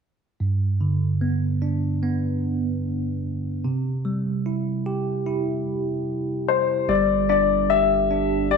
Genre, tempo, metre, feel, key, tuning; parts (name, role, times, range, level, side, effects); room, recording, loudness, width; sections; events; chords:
pop; 74 BPM; 4/4; straight; G major; A4 = 440 Hz
bell-like tine electric piano; accompaniment; 0.4-8.6 s; G2 to G4; -23 LUFS; right 2 dB; phaser
clear concert grand piano; melody; 6.5-8.6 s; C5 to E5; -19 LUFS; left 9 dB; slapback echo
saturated sub bass; bass; 6.9-8.6 s; G1; -30 LUFS; right 2 dB
moderate echo chamber reverb, RT60 1.5 s, small room ambience; -21 LUFS; side -5 dB against mid
0.4-6.9 A section; 6.9-8.6 B section
0.4 G; 3.6 C; 6.9 G5